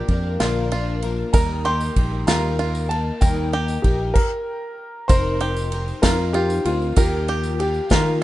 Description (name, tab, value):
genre	indie folk with a building arrangement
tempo	64 BPM (dotted quarters)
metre	6/8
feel	straight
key	unclear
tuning	A4 = 440 Hz
part	clear upright piano	melody	0.0-8.2 s	F4 to C6	-25 LUFS	equal	none
part	picked plugged-in twelve-string acoustic guitar	accompaniment	0.0-8.2 s	Bb2 to Bb4	-28 LUFS	left 4 dB	ensemble chorus
part	bluegrass banjo	arpeggios	0.0-8.2 s	F4 to Bb4	-27 LUFS	right 4 dB	tape echo
part	fingered electric bass	bass	0.1-8.2 s	F1 to Eb3	-24 LUFS	equal	none
part	unplugged drum kit	drums	0.1-8.1 s	crash cymbal, kick drum, ride cymbal, snare drum	-20 LUFS	equal	none
part	tambourine	percussion	1.3-8.1 s	none	-40 LUFS	left 4 dB	none
room	studio ambience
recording	rough home demo mix, nothing above 11.0 kHz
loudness	-18 LUFS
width	side -15 dB against mid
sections	0.0-5.1 A section; 5.1-8.2 B section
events	stop 4.2-5.1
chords	0.0 Bb; 1.3 Eb; 5.1 F7sus4; 7.0 Ebadd9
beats	0.41 | 1.35 2.29 | 3.22 4.16 | 5.10 6.04 | 6.97 7.91